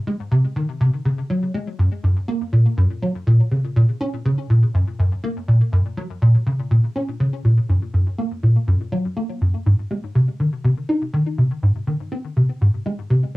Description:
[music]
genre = ambient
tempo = 122 BPM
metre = 4/4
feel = straight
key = Gb lydian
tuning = A4 = 439 Hz
[part]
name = tight sequencer bass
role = solo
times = 0.1-13.4 s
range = Gb2 to Eb4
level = -17 LUFS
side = equal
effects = ensemble chorus, cassette tape, ping-pong delay
[sound]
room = wet booth ambience, RT60 0.3 s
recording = home recording on cassette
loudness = -17 LUFS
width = side -20 dB against mid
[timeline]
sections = 0.0-13.4 A section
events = none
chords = none

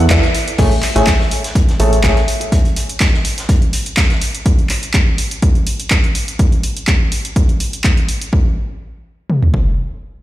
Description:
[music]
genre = piano house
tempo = 124 BPM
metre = 4/4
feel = swing 54% on 16ths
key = A major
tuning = A4 = 441 Hz
[part]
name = clear concert grand piano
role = riff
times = 0.0-2.1 s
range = E3 to A5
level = -18 LUFS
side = equal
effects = sidechain pumping, tape echo
[part]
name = fat analog bass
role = bass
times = 0.0-2.1 s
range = A1 to E2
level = -13 LUFS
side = equal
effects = sidechain pumping
[part]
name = punchy analog drum machine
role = drums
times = 0.1-9.7 s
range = kick drum, toms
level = -14 LUFS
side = equal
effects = overdrive
[part]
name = punchy analog drum machine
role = drums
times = 0.1-8.3 s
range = crash cymbal, handclaps, hi-hat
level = -20 LUFS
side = equal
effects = overdrive
[part]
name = vintage drum kit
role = drums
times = 0.1-4.3 s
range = hi-hat, snare drum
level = -29 LUFS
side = equal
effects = sidechain pumping on hats, high-pass filter on hats, high-pass filter on snare, high-pass filter on room
[sound]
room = light reverb, small room ambience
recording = played on a big sound system in a bare room, stone room reverb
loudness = -12 LUFS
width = side -15 dB against mid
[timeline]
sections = 0.6-8.3 A section; 8.3-10.2 B section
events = band accent 0.1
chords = 0.0 E7sus4; 0.6 Amaj7; 2.5 N.C.

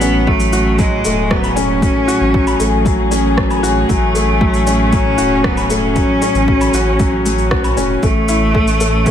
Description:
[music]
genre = piano and strings electronica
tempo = 116 BPM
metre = 4/4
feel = straight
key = unclear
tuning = A4 = 440 Hz
[part]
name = bright cello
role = melody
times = 0.0-9.1 s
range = G#3 to C#4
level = -18 LUFS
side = equal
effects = none
[part]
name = dark studio string section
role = sustained chords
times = 0.0-9.1 s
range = A2 to G#4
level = -20 LUFS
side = left 2 dB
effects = sidechain pumping
[part]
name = clear upright piano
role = riff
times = 0.0-9.1 s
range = F#3 to A4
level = -17 LUFS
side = left 2 dB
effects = none
[part]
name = round analog bass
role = bass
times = 0.0-9.1 s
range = E1 to B1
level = -19 LUFS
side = right 1 dB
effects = sidechain pumping
[part]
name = electronic shaker, rim click and woodblock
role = drums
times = 0.0-9.1 s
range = none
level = -23 LUFS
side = equal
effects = none
[part]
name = electronic kick drum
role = drums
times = 0.3-9.1 s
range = none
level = -18 LUFS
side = right 1 dB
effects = overdrive
[sound]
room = light reverb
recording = none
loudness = -12 LUFS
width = side -9 dB against mid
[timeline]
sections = 0.0-9.1 A section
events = none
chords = 0.0 F#madd9; 8.0 A

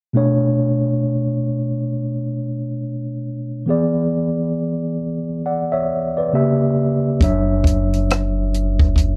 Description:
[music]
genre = R&B, neo-soul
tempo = 68 BPM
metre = 4/4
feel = swing 61% on 16ths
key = B dorian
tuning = A4 = 440 Hz
[part]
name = mellow tine electric piano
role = accompaniment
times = 0.1-9.2 s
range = B2 to F#5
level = -21 LUFS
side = equal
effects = none
[part]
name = round analog bass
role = bass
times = 7.2-9.2 s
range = F#1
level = -22 LUFS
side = equal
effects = none
[part]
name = compact cocktail drum kit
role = drums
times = 7.2-9.2 s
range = hi-hat, kick drum, rim click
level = -18 LUFS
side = equal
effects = none
[sound]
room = little or no reverb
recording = dry, close 1970s-style studio recording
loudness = -20 LUFS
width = mono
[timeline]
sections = 0.1-9.2 A section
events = none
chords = 0.1 Bm9; 3.7 E7; 6.3 C#dim7; 7.2 Dmaj7/F#

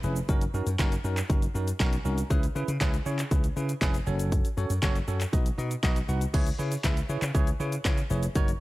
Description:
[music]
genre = dance-pop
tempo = 119 BPM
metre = 4/4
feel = straight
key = C# minor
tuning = A4 = 444 Hz
[part]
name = bell-like tine electric piano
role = accompaniment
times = 0.0-8.5 s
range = C#4 to F#5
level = -33 LUFS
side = equal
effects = medium stereo tremolo, sidechain pumping
[part]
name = slap bass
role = bass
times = 0.0-8.5 s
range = E#1 to C#3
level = -29 LUFS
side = equal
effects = sidechain pumping
[part]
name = house drum kit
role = drums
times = 0.0-8.6 s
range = crash cymbal, handclaps, hi-hat, kick drum, shaker, snare drum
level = -27 LUFS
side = equal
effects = none
[sound]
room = digital ambience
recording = dry, gritty hardware recording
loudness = -25 LUFS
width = side -18 dB against mid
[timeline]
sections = 0.0-6.3 A section; 6.3-8.6 B section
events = none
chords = 0.3 F#6; 2.3 C#m7; 4.1 F#m; 5.3 B; 6.3 C#m7

